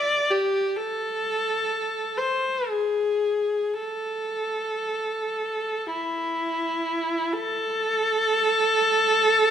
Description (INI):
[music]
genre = classical, free, expressive piece for unaccompanied viola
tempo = free time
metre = none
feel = none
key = A minor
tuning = A4 = 440 Hz
[part]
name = rich viola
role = solo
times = 0.0-9.5 s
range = E4 to D5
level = -22 LUFS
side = equal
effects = none
[sound]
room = moderate recital hall reverb, RT60 1.5 s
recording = minimal, uncompressed stereo recording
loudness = -22 LUFS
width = side -9 dB against mid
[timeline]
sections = 0.0-7.3 A section; 7.3-9.5 B section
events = none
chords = none